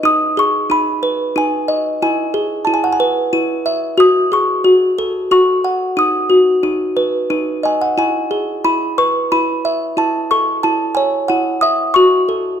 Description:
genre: children's music.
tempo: 91 BPM.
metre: 3/4.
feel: straight.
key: E major.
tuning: A4 = 440 Hz.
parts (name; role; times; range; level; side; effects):
music box; solo; 0.0-12.6 s; D#4 to D#6; -13 LUFS; equal; none.
room: moderate recital hall reverb, RT60 1.6 s.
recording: none.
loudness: -13 LUFS.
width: side -8 dB against mid.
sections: 0.0-8.0 A section; 8.0-12.6 B section.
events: none.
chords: 0.0 G#m; 2.0 E; 4.0 F#madd9; 6.0 B; 8.0 E; 10.0 A/E; 12.0 F#m.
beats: | 0.04 0.71 1.37 | 2.03 2.68 3.33 | 3.99 4.65 5.31 | 5.97 6.64 7.31 | 7.98 8.65 9.32 | 9.98 10.64 11.30 | 11.95.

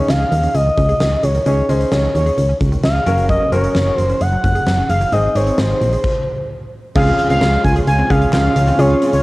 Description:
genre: synth-pop.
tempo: 131 BPM.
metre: 4/4.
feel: straight.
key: Db major.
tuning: A4 = 440 Hz.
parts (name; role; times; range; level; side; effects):
expressive synth lead; melody; 0.0-9.2 s; C5 to Ab5; -18 LUFS; equal; chorus, cassette tape, analog delay.
clear concert grand piano; accompaniment; 0.0-9.2 s; C4 to Bb4; -22 LUFS; left 1 dB; cassette tape.
analog pluck; arpeggios; 0.0-9.1 s; Eb3 to F5; -27 LUFS; right 2 dB; chorus, cassette tape, analog delay.
solid FM bass; bass; 0.1-9.2 s; Gb1 to Eb2; -16 LUFS; equal; none.
huge arena drum kit; drums; 0.1-9.2 s; crash cymbal, handclaps, hi-hat, kick drum, snare drum; -22 LUFS; equal; cassette tape.
brassy analog pad; sustained chords; 7.0-9.2 s; Db3 to F4; -21 LUFS; right 1 dB; chorus, cassette tape.
room: light reverb, small room ambience.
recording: home recording on cassette.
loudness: -13 LUFS.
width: side -20 dB against mid.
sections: 0.0-7.0 A section; 7.0-9.2 B section.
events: stop 6.0-7.0.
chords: 0.0 Dbsus2; 3.1 Gbadd9; 5.1 Ab; 7.0 Dbmaj7.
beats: 0.09 0.55 1.00 | 1.46 1.92 2.38 2.83 | 3.29 3.75 4.21 4.67 | 5.12 5.58 6.04 6.50 | 6.96 7.42 7.87 8.33 | 8.79.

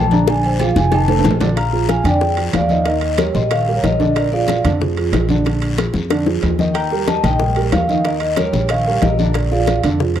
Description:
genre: Afro-Cuban jazz.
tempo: 185 BPM.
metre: 4/4.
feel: straight.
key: Bb major.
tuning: A4 = 440 Hz.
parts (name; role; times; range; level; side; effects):
vibraphone with soft mallets; melody; 0.0-4.6, 6.8-9.8 s; C5 to Bb5; -20 LUFS; left 1 dB; none.
dark upright piano; accompaniment; 0.0-10.2 s; D3 to Eb5; -20 LUFS; right 4 dB; none.
upright bass; bass; 0.0-10.2 s; F1 to F2; -19 LUFS; equal; none.
congas; percussion; 0.1-10.2 s; none; -22 LUFS; left 4 dB; none.
cowbell and bongos; percussion; 0.1-10.2 s; none; -23 LUFS; left 8 dB; none.
guiro; percussion; 0.1-10.2 s; none; -34 LUFS; left 7 dB; none.
agogo bells and timbales; percussion; 0.3-10.2 s; none; -27 LUFS; right 8 dB; none.
lap resonator guitar; second line; 1.6-4.6, 6.7-9.8 s; Bb4 to G5; -27 LUFS; right 2 dB; none.
room: studio ambience.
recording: dry, close 1970s-style studio recording, lossy compression artefacts.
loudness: -14 LUFS.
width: side -10 dB against mid.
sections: 0.0-1.6 A section; 1.6-10.2 B section.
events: vibraphone solo 0.0-1.6; drum fill 0.3-1.6, 5.8-6.8.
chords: 0.3 Bb7; 0.9 F7; 1.6 Bb7; 2.9 Eb; 4.2 Bb7; 6.8 Eb7; 9.3 Bb7.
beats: | 0.28 0.60 0.93 1.25 | 1.57 1.89 2.22 2.54 | 2.86 3.19 3.51 3.84 | 4.16 4.49 4.81 5.13 | 5.46 5.78 6.11 6.43 | 6.76 7.08 7.40 7.73 | 8.05 8.38 8.70 9.03 | 9.35 9.67 10.00.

